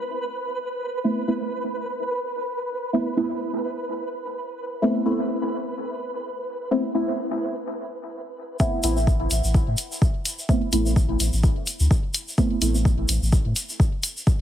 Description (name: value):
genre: dub techno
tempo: 127 BPM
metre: 4/4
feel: swing 56% on 16ths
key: A minor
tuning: A4 = 441 Hz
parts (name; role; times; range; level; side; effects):
- flickering grainy texture; texture; 0.0-8.6 s; B4; -30 LUFS; right 1 dB; built-in reverb, sidechain pumping
- deep mellow chord stab; stabs; 1.0-12.7 s; A3 to E4; -25 LUFS; right 1 dB; chorus, phaser, sidechain pumping, dub echo
- electronic kick drum; drums; 8.6-14.4 s; none; -20 LUFS; equal; none
- tube shaker; percussion; 8.6-14.4 s; none; -30 LUFS; left 1 dB; none
- warm sub bass; bass; 8.8-13.5 s; A1 to A2; -22 LUFS; equal; sidechain pumping
- electronic hi-hat; drums; 8.8-14.1 s; none; -26 LUFS; left 2 dB; none
room: light reverb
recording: heavily compressed radio sound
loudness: -22 LUFS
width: side -10 dB against mid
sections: 0.0-8.6 A section; 8.6-14.4 B section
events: filter sweep on synth stab 0.0-8.6, 8.6-14.4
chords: 0.0 Amadd9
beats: 0.10 0.57 | 1.04 1.51 1.99 2.46 | 2.93 3.40 3.88 4.35 | 4.82 5.29 5.76 6.24 | 6.71 7.18 7.66 8.13 | 8.60 9.07 9.54 10.02 | 10.49 10.96 11.44 11.91 | 12.38 12.85 13.32 13.80 | 14.27